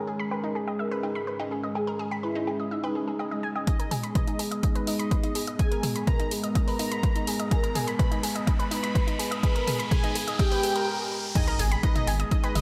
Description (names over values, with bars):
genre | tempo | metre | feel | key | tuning
melodic techno | 125 BPM | 4/4 | straight | G# minor | A4 = 440 Hz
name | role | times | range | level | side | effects
expressive synth lead | melody | 0.0-12.6 s | D#4 to B4 | -36 LUFS | equal | lush chorus, sidechain pumping, delay
dark analog pad | sustained chords | 0.0-12.6 s | G#3 to G#4 | -37 LUFS | equal | chorus, sidechain pumping
analog drone | drone | 0.0-3.7 s | G#2 to D#3 | -49 LUFS | equal | chorus, sidechain pumping
ethereal airy pad | texture | 0.0-10.9 s | G#3 to G#5 | -41 LUFS | equal | none
analog pluck | arpeggios | 0.1-12.6 s | D#4 to D#6 | -35 LUFS | equal | chorus, cassette tape, sidechain pumping, delay
punchy analog drum machine | drums | 0.3-12.6 s | crash cymbal, hi-hat, toms, woodblock | -36 LUFS | equal | overdrive, low-pass filter on perc, low-pass filter on hats, low-pass filter on toms, low-pass filter on cymbals
swell, riser and impact | sound effects | 2.9-12.6 s | none | -39 LUFS | equal | none
big bright polysynth | second line | 3.7-12.6 s | D#5 to B5 | -39 LUFS | equal | lush chorus, sidechain pumping, delay
electronic kick drum | drums | 3.7-12.4 s | none | -27 LUFS | equal | overdrive
round analog bass | bass | 11.6-12.6 s | G#1 | -28 LUFS | equal | sidechain pumping
room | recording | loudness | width
wet lush hall reverb, RT60 2.2 s | dreamy mix soaked in reverb | -27 LUFS | mono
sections
0.0-3.7 A section; 3.7-11.4 B section; 11.4-12.6 C section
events
filter sweep on synth pluck 0.0-3.7, 3.7-11.4; build-up 3.7-11.4; filter sweep on analog synth lead 3.7-11.4; filter sweep on analog polysynth 3.7-11.4; riser 6.5-11.4; stop 10.9-11.4; drop 11.4-12.6; impact 11.4-12.6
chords
0.0 E (rootless); 3.7 G#madd9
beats
0.31 0.79 1.27 | 1.75 2.23 2.71 3.19 | 3.67 4.15 4.63 5.11 | 5.59 6.07 6.55 7.03 | 7.51 7.99 8.47 8.95 | 9.43 9.91 10.39 10.87 | 11.35 11.83 12.31